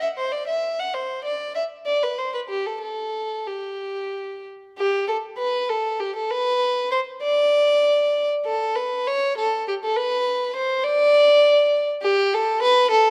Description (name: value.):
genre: classical, baroque-style suite movement for unaccompanied violin.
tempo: 89-104 BPM.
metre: 3/4.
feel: rubato.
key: G major.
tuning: A4 = 440 Hz.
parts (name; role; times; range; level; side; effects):
warm violin; solo; 0.0-13.1 s; G4 to F#5; -22 LUFS; equal; none.
room: wet recital hall reverb, RT60 1.7 s.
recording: none.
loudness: -22 LUFS.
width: mono.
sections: 0.0-4.8 A section; 4.8-13.1 B section.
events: none.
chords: none.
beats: 0.33 | 0.94 1.55 2.16 | 2.81 3.47 4.13 | 4.79 5.40 6.01 | 6.62 7.23 7.84 | 8.46 9.07 9.67 | 10.27 10.86 11.44 | 12.03 12.62.